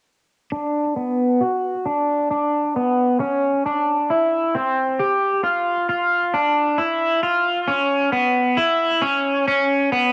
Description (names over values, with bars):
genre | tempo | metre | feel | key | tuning
dream pop | 67 BPM | 4/4 | straight | unclear | A4 = 441 Hz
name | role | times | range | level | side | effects
electric guitar at the edge of break-up | solo | 0.5-10.1 s | B3 to G4 | -20 LUFS | equal | subtle chorus, low-pass filter, analog delay
room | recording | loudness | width
wet spring reverb, RT60 1.7 s | home recording on cassette | -20 LUFS | mono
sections
0.5-10.1 A section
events
filter sweep on clean electric guitar 0.5-10.1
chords
none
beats
| 0.52 1.42 2.31 3.21 | 4.10 5.00 5.89 6.79 | 7.68 8.58 9.48